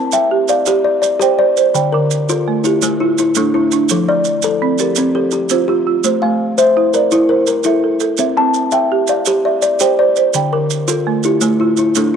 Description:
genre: southern african traditional, mbira-style interlocking cycle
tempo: 112 BPM (dotted quarters)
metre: 12/8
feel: straight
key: C mixolydian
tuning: A4 = 441 Hz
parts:
  - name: folk marimba with medium hard mallets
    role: arpeggios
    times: 0.0-12.2 s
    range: D3 to G5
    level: -16 LUFS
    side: right 10 dB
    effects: cassette tape
  - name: kalimba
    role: arpeggios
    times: 0.0-12.2 s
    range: D3 to A5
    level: -14 LUFS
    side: left 5 dB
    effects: cassette tape
  - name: maracas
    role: percussion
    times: 0.1-12.1 s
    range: none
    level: -22 LUFS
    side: right 13 dB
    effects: none
room: wet spring reverb, RT60 2.4 s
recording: home recording on cassette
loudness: -12 LUFS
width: side -7 dB against mid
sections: 0.0-12.2 A section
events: none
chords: 0.0 C; 1.7 Dm; 3.9 F; 6.0 Am; 8.2 C; 10.3 Dm

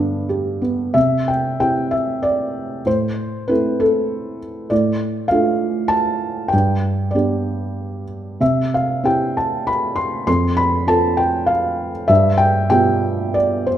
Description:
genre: classical, lyrical solo piano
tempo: 96 BPM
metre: 3/4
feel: rubato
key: C major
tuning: A4 = 441 Hz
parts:
  - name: felt-muted upright piano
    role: solo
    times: 0.0-13.8 s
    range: F2 to C6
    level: -16 LUFS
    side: equal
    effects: none
room: moderate recital hall reverb, RT60 1.4 s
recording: recorded in a church or concert hall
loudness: -16 LUFS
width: side -11 dB against mid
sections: 1.0-13.8 A section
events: none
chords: 0.0 G; 1.0 C; 2.9 Am; 4.7 Dm/A; 6.5 G; 8.4 C; 10.3 F; 12.1 G7

